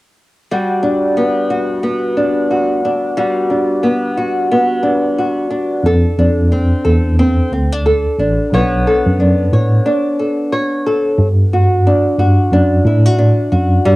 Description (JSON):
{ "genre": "indie pop, bedroom pop", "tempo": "90 BPM", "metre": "4/4", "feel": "swing 60% on 16ths", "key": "G lydian", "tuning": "A4 = 436 Hz", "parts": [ { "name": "flamenco guitar", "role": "accompaniment", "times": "0.5-14.0 s", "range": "G3 to C#5", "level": "-14 LUFS", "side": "equal", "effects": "wide subtle chorus, vibrato effect, cassette tape" }, { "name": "tine electric piano", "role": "bass", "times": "5.8-14.0 s", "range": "A1 to A2", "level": "-12 LUFS", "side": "equal", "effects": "medium tremolo" } ], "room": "moderate booth ambience, RT60 0.2 s", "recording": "home recording on cassette", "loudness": "-12 LUFS", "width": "side -19 dB against mid", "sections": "0.5-11.2 A section; 11.2-14.0 B section", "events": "break 9.8-11.2", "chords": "0.5 Gmaj7; 5.8 F6; 8.5 Bm9; 11.2 G5", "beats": "| 0.51 1.17 1.84 2.51 | 3.18 3.84 4.51 5.18 | 5.85 6.51 7.18 7.85 | 8.51 9.18 9.85 10.52 | 11.18 11.85 12.51 13.18 | 13.85" }